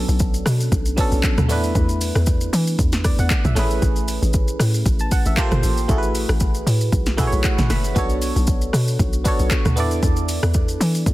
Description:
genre	amapiano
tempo	116 BPM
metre	4/4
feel	swing 55% on 16ths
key	B dorian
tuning	A4 = 440 Hz
part	barking FM electric piano	accompaniment	0.0-11.1 s	F#3 to B5	-24 LUFS	right 1 dB	chorus
part	hollow log drum bass	bass	0.0-11.1 s	F#1 to E3	-20 LUFS	equal	none
part	deep house drum kit	drums	0.1-11.1 s	handclaps, hi-hat, kick drum, rim click, shaker, snare drum, toms	-20 LUFS	equal	overdrive
room	little or no reverb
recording	dense, heavily limited modern master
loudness	-17 LUFS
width	side -17 dB against mid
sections	0.0-11.1 A section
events	FM electric piano fill 6.9-8.0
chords	0.0 Bm9; 1.5 E7sus4; 3.6 Amaj9; 5.4 Gm11; 5.9 F#m11/A; 8.0 Bm9; 9.8 E7sus4

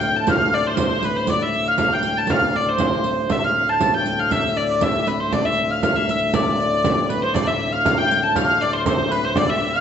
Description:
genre	medieval dance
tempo	119 BPM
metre	2/4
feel	straight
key	D dorian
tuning	A4 = 440 Hz
part	clear hurdy-gurdy	melody	0.0-9.8 s	B4 to A5	-20 LUFS	equal	none
part	mellow soprano recorder	second line	0.0-9.8 s	B5 to A6	-25 LUFS	left 3 dB	none
part	pedal harmonium	drone	0.0-9.8 s	D2 to A2	-26 LUFS	left 2 dB	none
part	frame drum	percussion	0.0-9.6 s	none	-24 LUFS	right 2 dB	none
part	riq	percussion	0.0-9.6 s	none	-29 LUFS	right 6 dB	none
room	wet recital hall reverb, RT60 1.5 s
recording	nothing above 7.9 kHz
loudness	-17 LUFS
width	side -8 dB against mid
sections	0.0-7.3 A section; 7.3-9.8 A section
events	none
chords	none

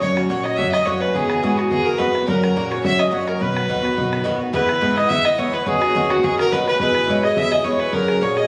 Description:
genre	celtic folk, Celtic reel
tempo	212 BPM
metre	4/4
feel	swing 53% on 8ths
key	unclear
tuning	A4 = 440 Hz
part	clear fiddle	melody	0.0-8.5 s	F#4 to E5	-23 LUFS	equal	plate reverb
part	Celtic harp	second line	0.0-8.5 s	F#4 to F#5	-29 LUFS	equal	none
part	accordion	second line	0.0-8.4 s	F#4 to E5	-28 LUFS	equal	none
part	Irish bouzouki	accompaniment	0.0-8.5 s	G#2 to G#4	-25 LUFS	equal	none
part	upright bass	bass	0.0-8.4 s	B1 to A#2	-28 LUFS	equal	none
part	bodhran	percussion	0.0-8.4 s	none	-32 LUFS	equal	none
room	wet small room reverb, RT60 0.5 s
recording	recorded on a phone in the room, club reverb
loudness	-19 LUFS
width	mono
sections	0.0-4.5 A section; 4.5-8.5 A section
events	none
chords	0.0 F#; 1.1 Eadd9; 2.3 F#; 3.4 B; 4.5 E; 5.7 Badd9/D#; 6.8 E; 7.9 F#add9

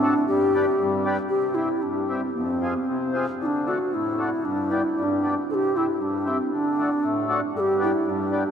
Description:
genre	alpine folk, alpine dance band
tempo	116 BPM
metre	2/4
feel	straight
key	C major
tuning	A4 = 438 Hz
part	reedy bass bansuri	melody	0.0-8.5 s	C4 to A4	-23 LUFS	equal	none
part	mellow accordion	accompaniment	0.0-8.4 s	F2 to B4	-27 LUFS	left 2 dB	none
room	wet cathedral reverb, RT60 6.8 s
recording	in a vast, echoing space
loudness	-21 LUFS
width	side -8 dB against mid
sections	0.0-1.3 A section; 1.3-8.5 B section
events	none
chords	0.3 G; 1.3 C; 2.4 Fm; 3.4 Dadd9; 4.4 G; 5.5 C; 6.5 D; 7.5 G

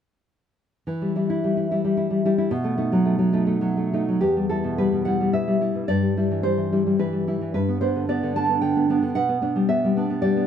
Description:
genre	romantic piece for solo classical guitar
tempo	97-116 BPM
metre	3/4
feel	rubato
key	E minor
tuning	A4 = 440 Hz
part	nylon-string guitar	solo	0.9-10.5 s	E2 to A5	-20 LUFS	equal	none
room	light reverb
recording	close, detailed microphones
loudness	-20 LUFS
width	side -8 dB against mid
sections	0.9-4.2 A section; 4.2-10.5 B section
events	none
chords	0.9 Em; 2.5 B7; 4.2 Em; 5.9 Em/G; 7.5 G; 9.1 G/B

